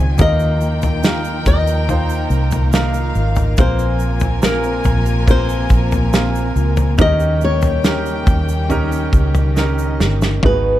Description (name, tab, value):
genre	pop ballad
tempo	70 BPM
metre	4/4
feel	straight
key	unclear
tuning	A4 = 440 Hz
part	flamenco guitar	melody	0.0-10.8 s	Bb4 to Eb5	-20 LUFS	left 2 dB	none
part	warm studio violin section	second line	0.0-10.4 s	Eb5 to Ab5	-29 LUFS	left 3 dB	none
part	clear baby grand piano	accompaniment	0.0-10.8 s	G#2 to C5	-23 LUFS	right 4 dB	none
part	warm studio string section	sustained chords	0.0-10.8 s	C3 to Bb4	-28 LUFS	right 1 dB	none
part	fingerpicked steel-string acoustic guitar	arpeggios	0.0-10.8 s	F2 to G#4	-29 LUFS	left 10 dB	slapback echo
part	vintage muted fingered electric bass	bass	0.0-10.8 s	G1 to Eb2	-18 LUFS	equal	none
part	loose indie drum kit	drums	0.2-10.6 s	kick drum, snare drum, toms	-17 LUFS	equal	none
part	tube shaker	percussion	0.2-10.4 s	none	-37 LUFS	right 18 dB	none
room	small room ambience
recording	dark, warm production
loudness	-14 LUFS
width	side -14 dB against mid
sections	0.0-10.4 A section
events	drum fill 9.6-10.4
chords	0.2 Ebsus2; 3.6 Bbsus2; 7.0 Eb7